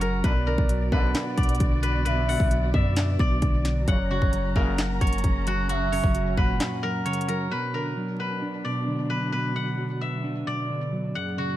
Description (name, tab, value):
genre	hip hop, trap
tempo	132 BPM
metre	4/4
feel	half-time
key	B harmonic minor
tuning	A4 = 440 Hz
part	steel-string zither	melody	0.0-11.6 s	F#4 to F#5	-30 LUFS	left 1 dB	low-pass filter, digital delay
part	gliding portamento lead	second line	0.0-7.5 s	C#5 to F#5	-34 LUFS	equal	chorus, phaser, digital delay
part	clean electric guitar	accompaniment	0.0-11.6 s	F#2 to D4	-29 LUFS	right 1 dB	low-pass filter
part	dark symphonic string section	sustained chords	0.0-11.6 s	F#2 to A#5	-36 LUFS	left 1 dB	none
part	warm 808-style bass	bass	0.0-6.6 s	F#1 to F#2	-26 LUFS	equal	none
part	trap drum kit	drums	0.0-7.4 s	handclaps, hi-hat, kick drum, snare drum	-25 LUFS	equal	none
part	bright brass ensemble	stabs	0.2-4.9 s	F#2 to D3	-36 LUFS	left 4 dB	none
room	small room ambience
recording	vinyl crackle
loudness	-22 LUFS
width	side -14 dB against mid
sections	0.0-7.5 A section; 7.5-11.6 B section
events	break 6.6-7.5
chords	0.2 Bm; 3.9 F#; 7.5 Bm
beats	| 0.24 0.69 1.15 1.60 | 2.06 2.51 2.97 3.42 | 3.88 4.33 4.79 5.24 | 5.69 6.15 6.60 7.06 | 7.51 7.97 8.42 8.88 | 9.33 9.79 10.24 10.69 | 11.15